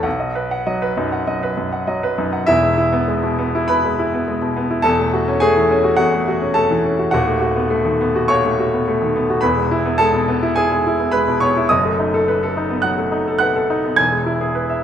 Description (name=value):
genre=classical, virtuoso piano study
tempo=105 BPM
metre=4/4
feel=rubato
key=E major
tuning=A4 = 441 Hz
part: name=clear baby grand piano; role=solo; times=0.0-14.8 s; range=D#1 to G#6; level=-15 LUFS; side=equal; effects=none
room=moderate recital hall reverb, RT60 1.4 s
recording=none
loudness=-15 LUFS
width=side -9 dB against mid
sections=0.0-2.5 A section; 2.5-14.8 B section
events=none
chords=0.1 B; 2.5 E; 4.8 F#m7/E; 7.1 B7/D#; 9.4 E; 11.7 B7/F#; 14.0 E